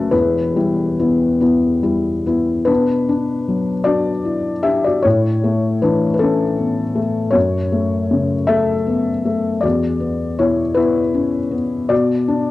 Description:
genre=neoclassical minimalist piano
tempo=52 BPM (dotted quarters)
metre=6/8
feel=rubato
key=B minor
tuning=A4 = 441 Hz
part: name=felt-muted upright piano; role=solo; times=0.0-12.5 s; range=E1 to E5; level=-15 LUFS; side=left 2 dB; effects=none
room=light reverb, studio ambience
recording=home recording on cassette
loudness=-15 LUFS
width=side -16 dB against mid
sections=0.0-2.7 A section; 2.7-12.5 B section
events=none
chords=0.1 Em; 2.7 Bm; 5.0 A; 7.4 F#m; 9.6 E5; 11.9 Bm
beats=| 0.12 1.42 | 2.69 3.87 | 5.05 6.21 | 7.35 8.50 | 9.64 10.78 | 11.91

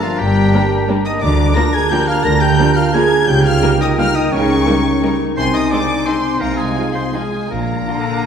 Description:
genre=classical, orchestral ballroom waltz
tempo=152-190 BPM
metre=3/4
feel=rubato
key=Eb major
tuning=A4 = 441 Hz
part: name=rich studio violin section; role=melody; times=0.0-8.3 s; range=F5 to Bb6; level=-23 LUFS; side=left 4 dB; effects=none
part: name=dark clarinet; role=second line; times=0.0-8.3 s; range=D4 to Eb4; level=-23 LUFS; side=equal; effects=none
part: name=hollow concert flute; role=second line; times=0.0-8.3 s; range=F5 to Bb5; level=-26 LUFS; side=left 1 dB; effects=none
part: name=warm oboe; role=second line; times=0.0-8.3 s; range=F4 to Bb5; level=-23 LUFS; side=equal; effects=none
part: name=dark French horn section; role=sustained chords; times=0.0-8.3 s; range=F3 to Bb4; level=-20 LUFS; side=equal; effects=none
part: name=concert harp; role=arpeggios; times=0.0-8.3 s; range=G2 to F5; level=-24 LUFS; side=left 2 dB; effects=none
part: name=rich studio double bass section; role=bass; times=0.2-7.8 s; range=G1 to D2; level=-20 LUFS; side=right 2 dB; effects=none
part: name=warm studio cello section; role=bass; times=0.2-7.8 s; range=G2 to D3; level=-22 LUFS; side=right 3 dB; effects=none
part: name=dark studio violin section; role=second line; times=0.5-8.0 s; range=D4 to Bb4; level=-28 LUFS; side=left 1 dB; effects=none
part: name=rich studio viola section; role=accompaniment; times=0.5-8.3 s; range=D3 to Eb4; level=-24 LUFS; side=right 1 dB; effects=none
room=wet scoring stage reverb, RT60 2.0 s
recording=heard from further back in the room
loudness=-13 LUFS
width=side -7 dB against mid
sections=0.0-8.3 A section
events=none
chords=0.0 Gm; 1.2 Bb/D; 3.3 Eb7/Db; 5.4 Ab/C; 6.4 Fm7/C; 7.5 Bb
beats=| 0.20 0.53 0.89 | 1.22 1.56 1.92 | 2.25 2.58 2.94 | 3.28 3.62 3.98 | 4.32 4.67 5.03 | 5.37 5.71 6.07 | 6.41 6.76 7.14 | 7.51 7.88

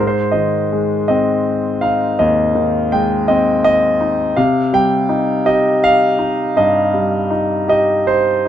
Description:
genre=classical, lyrical solo piano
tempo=54 BPM (dotted quarters)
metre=6/8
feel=rubato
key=Ab major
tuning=A4 = 440 Hz
part: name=bright concert grand piano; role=solo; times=0.0-8.5 s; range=Eb2 to G5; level=-13 LUFS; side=equal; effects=none
room=moderate studio reverb, RT60 0.7 s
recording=none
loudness=-13 LUFS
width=side -10 dB against mid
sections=0.0-8.5 A section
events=none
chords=0.0 Ab; 4.4 Cm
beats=1.08 | 2.18 3.27 | 4.36 5.46 | 6.57 7.70

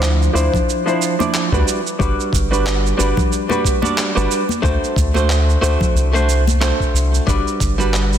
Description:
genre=sunset chillout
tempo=91 BPM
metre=4/4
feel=swing 57% on 16ths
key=G major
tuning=A4 = 440 Hz
part: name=archtop guitar, miked and amplified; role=accompaniment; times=0.0-8.2 s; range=F3 to D5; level=-18 LUFS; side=moving between left 2 dB and right 4 dB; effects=auto-pan, low-pass filter, digital delay
part: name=round analog bass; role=bass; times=0.0-8.2 s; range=G1 to D2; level=-17 LUFS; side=equal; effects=none
part: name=electronic handclaps and cabasa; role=drums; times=0.0-8.2 s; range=none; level=-24 LUFS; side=right 3 dB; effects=small room ambience
part: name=electronic kick drum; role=drums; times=0.5-7.8 s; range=none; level=-20 LUFS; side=equal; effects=small room ambience
part: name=congas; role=percussion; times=0.5-6.6 s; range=none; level=-26 LUFS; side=left 3 dB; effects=none
room=light reverb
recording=dense, heavily limited modern master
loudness=-14 LUFS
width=side -9 dB against mid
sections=0.0-8.2 A section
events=none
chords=0.0 Dm9; 1.7 Gmaj7; 4.6 D7; 7.3 Gmaj7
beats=0.02 0.68 1.34 | 2.00 2.66 3.32 3.98 | 4.64 5.30 5.96 6.62 | 7.28 7.93

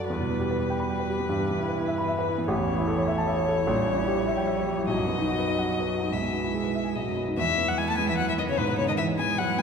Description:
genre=quick classical-period movement for piano trio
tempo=150 BPM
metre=3/4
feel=straight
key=E major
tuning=A4 = 439 Hz
part: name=muted violin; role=melody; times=0.0-9.6 s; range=B4 to A5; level=-29 LUFS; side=left 6 dB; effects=none
part: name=muted cello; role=second line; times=0.0-9.6 s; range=B2 to A3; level=-31 LUFS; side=right 4 dB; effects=none
part: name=warm grand piano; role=accompaniment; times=0.0-9.6 s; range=A1 to B5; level=-26 LUFS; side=equal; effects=none
room=wet church reverb, RT60 3.7 s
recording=recorded in a church or concert hall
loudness=-24 LUFS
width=side -6 dB against mid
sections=0.0-7.4 A section; 7.4-9.6 B section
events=none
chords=0.1 Em; 1.3 Em/G; 2.5 A; 3.7 A#dim7; 4.9 B; 6.1 E/B; 7.0 B; 7.4 E5; 8.6 E/G#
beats=| 0.10 0.50 0.90 | 1.30 1.69 2.09 | 2.48 2.88 3.28 | 3.68 4.08 4.48 | 4.88 5.29 5.70 | 6.11 6.53 6.95 | 7.37 7.78 8.18 | 8.58 8.99 9.39

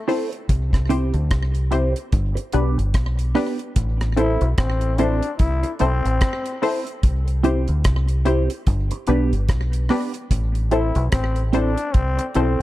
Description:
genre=roots reggae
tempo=73 BPM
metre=4/4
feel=swing 58% on 16ths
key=A minor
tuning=A4 = 440 Hz
part: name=growling trombone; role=second line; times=0.0-12.6 s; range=C4 to E4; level=-26 LUFS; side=left 3 dB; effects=tape echo
part: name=mellow electric guitar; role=accompaniment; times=0.1-12.6 s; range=B3 to C5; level=-25 LUFS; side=right 6 dB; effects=phaser, tape echo
part: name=filtered dub chord stab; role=stabs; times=0.1-12.5 s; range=B3 to C5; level=-25 LUFS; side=left 6 dB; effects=chorus
part: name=deep reggae drum kit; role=drums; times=0.1-12.6 s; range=hi-hat, kick drum, rim click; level=-22 LUFS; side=equal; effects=slapback echo
part: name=deep dub fingered electric bass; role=bass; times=0.5-12.6 s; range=G1 to D2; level=-20 LUFS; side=equal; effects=none
room=studio ambience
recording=dark, warm production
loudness=-18 LUFS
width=side -15 dB against mid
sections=0.0-12.6 A section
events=none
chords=0.5 C; 2.1 G; 3.8 Am; 7.0 C; 8.7 G; 10.3 Am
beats=| 0.49 1.31 2.13 2.94 | 3.76 4.58 5.40 6.21 | 7.03 7.85 8.67 9.49 | 10.31 11.12 11.94

